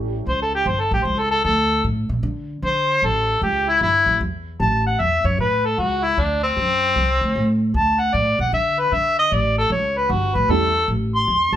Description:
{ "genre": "blues", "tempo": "152 BPM", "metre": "4/4", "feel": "swing 64% on 8ths", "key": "unclear", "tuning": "A4 = 440 Hz", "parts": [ { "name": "honky-tonk upright piano", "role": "accompaniment", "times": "0.0-0.2, 10.5-10.7 s", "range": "G3 to G4", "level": "-25 LUFS", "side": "right 6 dB", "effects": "none" }, { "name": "upright bass", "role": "bass", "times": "0.0-11.6 s", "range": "G1 to D3", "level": "-22 LUFS", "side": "equal", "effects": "none" }, { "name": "mellow harmonica", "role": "melody", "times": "0.3-11.6 s", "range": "C4 to C6", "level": "-18 LUFS", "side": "left 1 dB", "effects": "overdrive" } ], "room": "light reverb", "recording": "band playing live in one room", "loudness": "-17 LUFS", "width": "side -11 dB against mid", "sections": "0.0-11.6 A section", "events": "harmonica solo 0.0-11.6", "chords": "0.0 A7; 1.4 D5; 3.0 A; 6.2 D7(no3); 9.3 A7" }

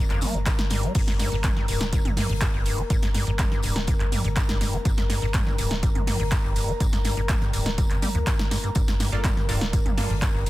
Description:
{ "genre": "acid house", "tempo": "123 BPM", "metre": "4/4", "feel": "straight", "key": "G minor", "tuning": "A4 = 441 Hz", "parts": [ { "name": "dark analog pad", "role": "sustained chords", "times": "0.0-10.5 s", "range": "Bb4 to Bb5", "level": "-34 LUFS", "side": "left 3 dB", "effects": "chorus, sidechain pumping" }, { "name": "acid bass, square", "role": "riff", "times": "0.0-10.5 s", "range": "F2 to Bb3", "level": "-29 LUFS", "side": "equal", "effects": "overdrive, analog chorus, sidechain pumping, ping-pong delay" }, { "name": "warm sub bass", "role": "bass", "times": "0.0-10.5 s", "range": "D1 to D2", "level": "-30 LUFS", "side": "equal", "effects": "sidechain pumping" }, { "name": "electro analog drum machine", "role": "drums", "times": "0.1-10.5 s", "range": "crash cymbal, handclaps, hi-hat, snare drum, toms", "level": "-29 LUFS", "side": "right 1 dB", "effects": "overdrive" }, { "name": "soft-mallet drum kit", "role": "drums", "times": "0.2-10.5 s", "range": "hi-hat, snare drum, tambourine", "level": "-40 LUFS", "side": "left 6 dB", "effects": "sidechain pumping on hats, high-pass filter on hats, high-pass filter on snare, sidechain pumping on perc, high-pass filter on perc, high-pass filter on room" }, { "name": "electronic kick drum", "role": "drums", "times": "0.5-10.3 s", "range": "none", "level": "-24 LUFS", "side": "equal", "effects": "none" }, { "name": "band-passed chord stab", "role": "stabs", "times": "9.1-10.1 s", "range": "Bb3 to A4", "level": "-36 LUFS", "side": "right 1 dB", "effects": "chorus, phaser, cassette tape, ping-pong delay" } ], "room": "little or no reverb", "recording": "dense, heavily limited modern master", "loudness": "-21 LUFS", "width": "side -17 dB against mid", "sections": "1.0-10.5 A section", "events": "drop 1.0-10.5", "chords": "0.0 Gm7" }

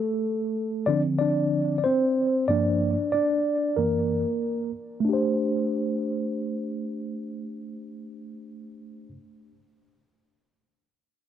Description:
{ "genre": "hip hop", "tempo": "93 BPM", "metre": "4/4", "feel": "swing 62% on 16ths", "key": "D minor", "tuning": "A4 = 440 Hz", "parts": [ { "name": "mellow tine electric piano", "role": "solo", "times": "0.0-9.1 s", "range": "F#2 to D5", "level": "-24 LUFS", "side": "equal", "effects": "medium stereo tremolo, low-pass filter, tape echo" } ], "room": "moderate studio ambience, RT60 0.5 s", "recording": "none", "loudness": "-23 LUFS", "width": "side -10 dB against mid", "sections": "0.0-5.1 A section; 5.1-7.7 B section", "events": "tine electric piano solo 0.0-5.1; filter sweep on tine electric piano 0.0-5.1", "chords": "0.0 Dm7; 2.5 Gm7; 3.8 F#7; 5.1 D5" }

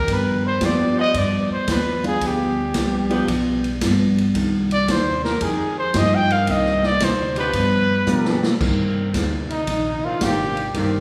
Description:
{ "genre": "jazz, big band swing", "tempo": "112 BPM", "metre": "4/4", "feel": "swing 68% on 8ths", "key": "C minor", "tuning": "A4 = 441 Hz", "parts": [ { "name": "breathy trumpet", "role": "melody", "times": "0.0-10.8 s", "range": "Eb4 to G5", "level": "-24 LUFS", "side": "equal", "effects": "none" }, { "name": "upright bass", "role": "bass", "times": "0.0-11.0 s", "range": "G1 to B2", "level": "-25 LUFS", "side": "equal", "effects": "none" }, { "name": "vintage hollow-body jazz guitar", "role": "accompaniment", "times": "0.1-11.0 s", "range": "G2 to G4", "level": "-28 LUFS", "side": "equal", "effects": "none" }, { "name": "swinging big-band drum kit", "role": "drums", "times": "0.1-10.9 s", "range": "crash cymbal, hi-hat, kick drum, ride cymbal, snare drum", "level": "-28 LUFS", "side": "equal", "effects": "none" }, { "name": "warm concert grand piano", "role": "accompaniment", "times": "0.6-11.0 s", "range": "Eb3 to G4", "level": "-28 LUFS", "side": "equal", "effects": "none" }, { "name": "clear saxophone section", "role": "sustained chords", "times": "1.0-11.0 s", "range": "Eb3 to D5", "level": "-34 LUFS", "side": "equal", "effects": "none" } ], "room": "wet scoring stage reverb, RT60 1.9 s", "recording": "recorded in a church or concert hall, studio reverb", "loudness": "-20 LUFS", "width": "mono", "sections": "0.0-8.6 A section; 8.6-11.0 A section", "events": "trumpet solo 0.0-8.6, 8.6-11.0; drum fill 8.1-8.6", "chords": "0.1 G7; 4.3 Cm9; 5.4 Fm9; 6.5 Cm9; 7.5 G7; 8.6 Cm9" }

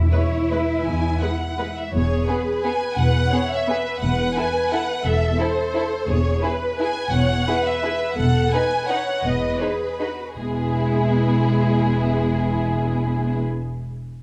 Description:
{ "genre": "classical, orchestral ballroom waltz", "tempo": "150-188 BPM", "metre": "3/4", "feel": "rubato", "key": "E major", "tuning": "A4 = 440 Hz", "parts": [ { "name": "rich studio double bass section", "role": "bass", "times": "0.0-13.4 s", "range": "E1 to E2", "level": "-25 LUFS", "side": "equal", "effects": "none" }, { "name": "warm symphonic cello section", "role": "bass", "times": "0.0-13.4 s", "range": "E2 to E4", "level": "-30 LUFS", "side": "equal", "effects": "none" }, { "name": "warm symphonic violin section", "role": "melody", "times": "0.1-13.4 s", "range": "G#4 to G#5", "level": "-29 LUFS", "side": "equal", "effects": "none" }, { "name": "rich symphonic violin section", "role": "second line", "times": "0.1-13.4 s", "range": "B3 to B4", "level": "-30 LUFS", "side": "equal", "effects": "none" }, { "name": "rich symphonic viola section", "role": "accompaniment", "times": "0.1-13.4 s", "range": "G#3 to C#5", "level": "-28 LUFS", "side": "equal", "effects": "none" } ], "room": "wet recital hall reverb, RT60 1.4 s", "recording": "dark, warm production", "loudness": "-21 LUFS", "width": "mono", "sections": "0.0-1.9 A section; 1.9-10.4 B section; 10.4-12.6 C section", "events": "slowing down 7.6-10.4", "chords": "0.0 E; 4.0 Am/E; 6.1 E; 8.2 B7/E; 10.4 E" }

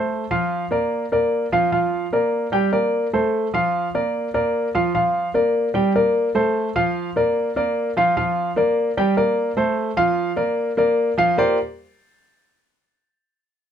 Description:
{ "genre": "jazz", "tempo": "149 BPM", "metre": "4/4", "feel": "straight", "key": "Bb major", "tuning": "A4 = 439 Hz", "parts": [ { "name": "warm concert grand piano", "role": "solo", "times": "0.0-11.6 s", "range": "F3 to G5", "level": "-18 LUFS", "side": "equal", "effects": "none" } ], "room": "light reverb", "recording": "dark, warm production", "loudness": "-18 LUFS", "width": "side -8 dB against mid", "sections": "0.0-11.4 A section; 11.4-13.0 B section", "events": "none", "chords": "0.1 F; 0.9 Bb; 2.5 Gmadd9; 3.3 F; 4.1 Bb; 5.8 Gmadd9; 6.6 F; 7.4 Bb; 9.0 Gmadd9; 9.8 F; 10.6 Bb; 11.4 Bb69" }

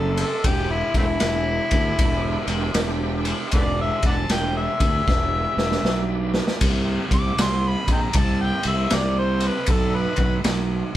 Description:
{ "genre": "blues rock power trio and southern rock", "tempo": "78 BPM", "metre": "4/4", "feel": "swing 65% on 8ths", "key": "E minor", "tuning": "A4 = 442 Hz", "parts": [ { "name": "overdriven harmonica", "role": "melody", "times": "0.0-10.4 s", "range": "A3 to D6", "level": "-25 LUFS", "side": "left 1 dB", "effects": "none" }, { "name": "bright tonewheel organ", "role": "sustained chords", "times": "0.0-11.0 s", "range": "G3 to G4", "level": "-34 LUFS", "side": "right 4 dB", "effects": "none" }, { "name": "fuzz fingered electric bass", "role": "bass", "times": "0.0-11.0 s", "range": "E1 to D2", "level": "-24 LUFS", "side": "right 1 dB", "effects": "overdrive" }, { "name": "raw garage drum kit", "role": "drums", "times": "0.2-11.0 s", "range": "crash cymbal, kick drum, ride cymbal, snare drum", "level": "-23 LUFS", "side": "equal", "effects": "none" } ], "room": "light reverb", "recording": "band playing live in one room", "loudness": "-19 LUFS", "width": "side -13 dB against mid", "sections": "0.0-11.0 A section", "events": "harmonica solo 0.0-11.0; drum fill 5.1-6.6", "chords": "0.4 Em7; 6.6 C7; 9.7 B7" }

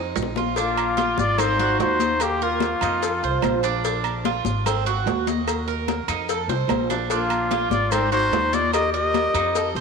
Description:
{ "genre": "latin, Cuban son and guajira", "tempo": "147 BPM", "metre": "4/4", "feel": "straight", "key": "Bb major", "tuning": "A4 = 440 Hz", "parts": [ { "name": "Cuban tres", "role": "arpeggios", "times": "0.0-9.8 s", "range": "C4 to Eb5", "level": "-26 LUFS", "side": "right 10 dB", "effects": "none" }, { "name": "upright bass", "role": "bass", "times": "0.0-9.8 s", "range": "Ab1 to F2", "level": "-28 LUFS", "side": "equal", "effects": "none" }, { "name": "bongos and cowbell", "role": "percussion", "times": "0.2-9.8 s", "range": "none", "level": "-31 LUFS", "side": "left 12 dB", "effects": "none" }, { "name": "claves", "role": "percussion", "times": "0.2-9.6 s", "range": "none", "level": "-40 LUFS", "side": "right 14 dB", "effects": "none" }, { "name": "congas", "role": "percussion", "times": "0.2-9.8 s", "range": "none", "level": "-30 LUFS", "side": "left 18 dB", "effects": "none" }, { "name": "maracas", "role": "percussion", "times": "0.2-9.8 s", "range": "none", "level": "-39 LUFS", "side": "left 14 dB", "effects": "none" }, { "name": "timbales and agogo bells", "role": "percussion", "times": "0.2-9.6 s", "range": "none", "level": "-31 LUFS", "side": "right 13 dB", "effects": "none" }, { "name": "breathy trumpet", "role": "melody", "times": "0.6-3.6, 7.1-9.7 s", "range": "F4 to Eb5", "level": "-23 LUFS", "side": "equal", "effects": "none" }, { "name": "clear clarinet", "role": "second line", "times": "0.6-3.0, 7.1-9.7 s", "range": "Bb3 to G4", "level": "-27 LUFS", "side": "left 11 dB", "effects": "none" } ], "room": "moderate plate reverb, RT60 3.3 s", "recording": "1960s-style stereo with parts hard left and right", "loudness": "-20 LUFS", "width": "side -5 dB against mid", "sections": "0.6-9.8 A section", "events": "drum fill 0.0-0.6, 6.5-7.1", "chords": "0.0 F5; 0.6 Bb; 1.4 Ab7; 2.2 Ebsus2; 3.0 F; 3.8 Bb; 4.7 Ab7; 5.5 Ebsus2; 6.3 F; 7.1 Bb; 7.9 Ab7; 8.7 Ebadd9" }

